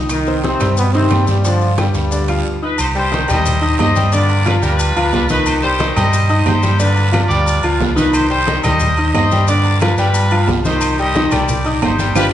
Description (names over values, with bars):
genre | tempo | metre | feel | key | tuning
latin, salsa | 179 BPM | 4/4 | straight | C harmonic minor | A4 = 440 Hz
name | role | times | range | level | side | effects
bright baby grand piano | accompaniment | 0.0-12.3 s | D3 to Eb6 | -19 LUFS | left 1 dB | none
fingered electric bass | bass | 0.0-12.3 s | G1 to G2 | -17 LUFS | equal | none
bright trombone section | melody | 0.1-2.6 s | G2 to F4 | -19 LUFS | equal | none
claves | percussion | 0.1-12.2 s | none | -31 LUFS | left 2 dB | none
congas | percussion | 0.1-12.2 s | none | -24 LUFS | left 1 dB | none
guiro | percussion | 0.1-12.2 s | none | -31 LUFS | right 6 dB | none
maracas | percussion | 0.1-12.2 s | none | -30 LUFS | left 5 dB | none
timbales and agogo bells | percussion | 0.1-12.2 s | none | -23 LUFS | right 3 dB | none
bright trumpet section | melody | 2.6-12.3 s | D4 to Eb5 | -18 LUFS | left 1 dB | none
room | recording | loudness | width
wet recital hall reverb, RT60 1.6 s | recorded in a church or concert hall, nothing above 11.0 kHz | -12 LUFS | side -11 dB against mid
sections
0.0-2.8 A section; 2.8-12.3 B section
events
break 2.5-2.8; drum fill 12.2; band accent 12.2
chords
0.1 Cm; 1.4 G5; 2.8 Cm; 4.1 G7; 5.5 Cm; 6.8 G7; 8.1 Cm; 9.5 G7; 10.8 Cm